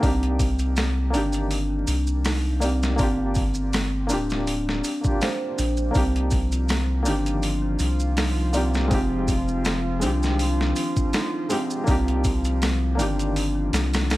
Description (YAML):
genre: trip hop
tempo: 81 BPM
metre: 4/4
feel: swing 55% on 16ths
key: C minor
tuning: A4 = 437 Hz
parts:
  - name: felt-muted upright piano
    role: accompaniment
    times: 0.0-14.2 s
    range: Eb3 to D5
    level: -29 LUFS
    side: left 1 dB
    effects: tremolo, low-pass filter, tape echo
  - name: large celesta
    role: arpeggios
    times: 0.0-14.2 s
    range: C4 to C5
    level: -27 LUFS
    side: equal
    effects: digital delay
  - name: soft dub sub bass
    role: bass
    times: 0.0-14.2 s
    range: D1 to C2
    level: -24 LUFS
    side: equal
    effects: none
  - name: boom bap sampler-style drum kit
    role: drums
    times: 0.0-14.2 s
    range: hi-hat, kick drum, snare drum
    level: -26 LUFS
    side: equal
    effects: overdrive
  - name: maracas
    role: percussion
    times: 0.0-14.2 s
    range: none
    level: -37 LUFS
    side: right 3 dB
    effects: none
  - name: warbly tape-like pad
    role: sustained chords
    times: 6.4-14.2 s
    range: F3 to F4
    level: -32 LUFS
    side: right 1 dB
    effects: chorus, built-in reverb
room: light reverb, small room ambience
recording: vinyl crackle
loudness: -21 LUFS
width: side -17 dB against mid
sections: 0.0-14.2 A section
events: none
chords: 0.0 Cm7; 3.0 Gm7; 6.0 Cm7; 8.9 Fm7; 11.9 Cm7